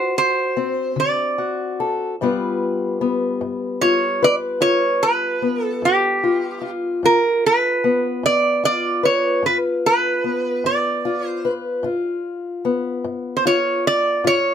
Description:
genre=acoustic country blues, solo or duo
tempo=50 BPM (dotted quarters)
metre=12/8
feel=straight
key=G mixolydian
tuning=A4 = 440 Hz
part: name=lap resonator guitar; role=melody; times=0.0-14.5 s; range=G4 to D5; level=-18 LUFS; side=right 3 dB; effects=none
part: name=fingerpicked old ladder-braced acoustic guitar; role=accompaniment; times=0.0-14.5 s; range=G2 to B4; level=-22 LUFS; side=left 4 dB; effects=none
room=light reverb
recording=close, detailed microphones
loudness=-17 LUFS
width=side -8 dB against mid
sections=0.0-2.2 A section; 2.2-14.5 A section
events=none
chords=0.0 D7; 2.2 G7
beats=0.97 | 2.19 3.40 4.61 5.82 | 7.03 8.23 9.44 10.64 | 11.85 13.05 14.25

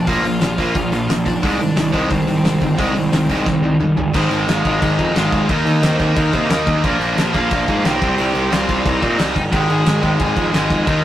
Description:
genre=punk rock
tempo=178 BPM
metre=4/4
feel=straight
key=unclear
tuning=A4 = 438 Hz
part: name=smooth overdriven lead guitar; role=melody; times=0.0-11.0 s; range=Bb3 to Ab5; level=-25 LUFS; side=equal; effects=none
part: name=distorted electric guitar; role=riff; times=0.0-11.0 s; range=Ab2 to Eb4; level=-18 LUFS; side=equal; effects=overdrive
part: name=fuzz picked electric bass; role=bass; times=0.0-11.0 s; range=F1 to C3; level=-20 LUFS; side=equal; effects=overdrive
part: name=loose indie drum kit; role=drums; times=0.1-10.9 s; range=crash cymbal, hi-hat, kick drum, snare drum, toms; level=-21 LUFS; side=equal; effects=none
room=moderate studio reverb, RT60 0.7 s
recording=rough rehearsal-room recording, tube saturation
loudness=-14 LUFS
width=side -12 dB against mid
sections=0.0-4.1 A section; 4.1-11.0 B section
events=drum fill 3.5-4.1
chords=0.0 Bb; 1.4 Ab; 5.5 Eb5; 6.8 Bb; 8.0 Cm; 9.5 Ab5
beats=| 0.07 0.41 0.75 1.09 | 1.43 1.77 2.11 2.45 | 2.79 3.12 3.46 3.80 | 4.14 4.48 4.81 5.15 | 5.49 5.83 6.16 6.50 | 6.84 7.17 7.51 7.84 | 8.18 8.52 8.85 9.19 | 9.53 9.86 10.20 10.53 | 10.87

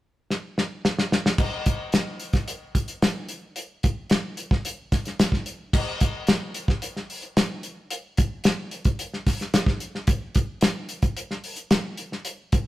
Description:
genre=funk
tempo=110 BPM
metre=4/4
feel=straight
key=none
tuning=none
part: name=damped 70s drum kit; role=drums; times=0.3-12.7 s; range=crash cymbal, hi-hat, kick drum, snare drum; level=-22 LUFS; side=equal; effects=none
room=light reverb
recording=rough rehearsal-room recording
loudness=-23 LUFS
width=side -16 dB against mid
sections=0.0-1.4 A section; 1.4-5.7 B section; 5.7-12.7 C section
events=drum fill 0.3-1.4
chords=none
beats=0.29 0.84 | 1.38 1.93 2.47 3.02 | 3.56 4.10 4.65 5.19 | 5.73 6.28 6.82 7.36 | 7.91 8.45 8.99 9.53 | 10.08 10.62 11.16 11.70 | 12.25

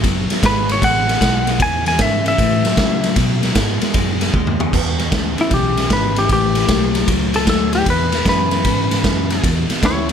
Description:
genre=electric blues shuffle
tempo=153 BPM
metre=4/4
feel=swing 67% on 8ths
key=E major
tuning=A4 = 440 Hz
part: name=electric guitar through a small old amp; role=riff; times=0.0-10.1 s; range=E2 to G#3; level=-20 LUFS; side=left 2 dB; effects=none
part: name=vintage muted fingered electric bass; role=bass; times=0.0-10.1 s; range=F#1 to C#3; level=-22 LUFS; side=equal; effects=none
part: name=raw garage drum kit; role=drums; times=0.0-10.1 s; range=crash cymbal, kick drum, ride cymbal, snare drum, toms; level=-18 LUFS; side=right 1 dB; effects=none
part: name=clean lap steel guitar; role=melody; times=0.5-10.1 s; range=E4 to G#5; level=-19 LUFS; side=left 1 dB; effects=plate reverb
room=light reverb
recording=none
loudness=-14 LUFS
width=side -8 dB against mid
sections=0.0-4.7 A section; 4.7-10.1 A section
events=electric slide guitar solo 0.0-4.7, 4.7-10.1; drum fill 4.3-4.7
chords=0.0 B7(no3); 1.6 E; 2.4 A; 3.2 B; 4.7 E7; 6.3 A7; 7.9 E7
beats=| 0.04 0.43 0.82 1.21 | 1.60 1.99 2.38 2.78 | 3.17 3.56 3.95 4.34 | 4.73 5.12 5.51 5.91 | 6.30 6.69 7.08 7.47 | 7.87 8.26 8.65 9.04 | 9.44 9.83

